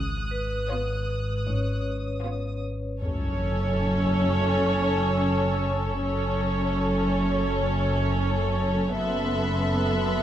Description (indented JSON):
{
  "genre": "cinematic, suspense film score",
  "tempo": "76-82 BPM",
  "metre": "4/4",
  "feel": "straight",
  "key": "F# minor from 3.0 s",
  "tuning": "A4 = 441 Hz",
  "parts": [
    { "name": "muted chamber cello section", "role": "bass", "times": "0.0-10.2 s", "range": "F#2 to C#3", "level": "-28 LUFS", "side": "equal", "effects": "none" },
    { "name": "muted studio double bass section", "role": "bass", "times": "0.0-10.2 s", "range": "F#1 to C#2", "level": "-30 LUFS", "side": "right 1 dB", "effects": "none" },
    { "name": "deep rumbling drone", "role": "drone", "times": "0.0-10.2 s", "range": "F#1 to G#1", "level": "-33 LUFS", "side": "left 1 dB", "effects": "built-in reverb" },
    { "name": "muted chamber violin section", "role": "texture", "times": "0.0-10.2 s", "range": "A5 to F#6", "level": "-36 LUFS", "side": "left 3 dB", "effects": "none" },
    { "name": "vibraphone with hard mallets", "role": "texture", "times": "0.3-9.0 s", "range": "C#4 to G#5", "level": "-35 LUFS", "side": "left 1 dB", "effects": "none" },
    { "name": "muted chamber violin section", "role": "melody", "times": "0.7-10.2 s", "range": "C#5 to E5", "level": "-31 LUFS", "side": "left 1 dB", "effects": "none" },
    { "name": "muted chamber violin section", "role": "second line", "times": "0.7-10.2 s", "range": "E#4 to A4", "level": "-32 LUFS", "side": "equal", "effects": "none" },
    { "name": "muted studio viola section", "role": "accompaniment", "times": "0.7-10.2 s", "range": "B3 to C#4", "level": "-30 LUFS", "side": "right 2 dB", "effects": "none" },
    { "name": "sub drop", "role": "sound effects", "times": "3.0-6.0 s", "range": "none", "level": "-33 LUFS", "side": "left 1 dB", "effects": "none" }
  ],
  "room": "light reverb",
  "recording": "close, detailed microphones",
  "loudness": "-23 LUFS",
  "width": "side -11 dB against mid",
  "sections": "0.0-3.0 A section; 3.0-10.2 B section",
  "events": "impact 3.0-6.0",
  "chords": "0.0 C#7/G#; 3.0 F#m; 9.0 Esus4/F#",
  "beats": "0.70 1.48 2.25 | 3.03 3.78 4.52 5.27 | 6.02 6.76 7.50 8.24 | 8.99 9.73"
}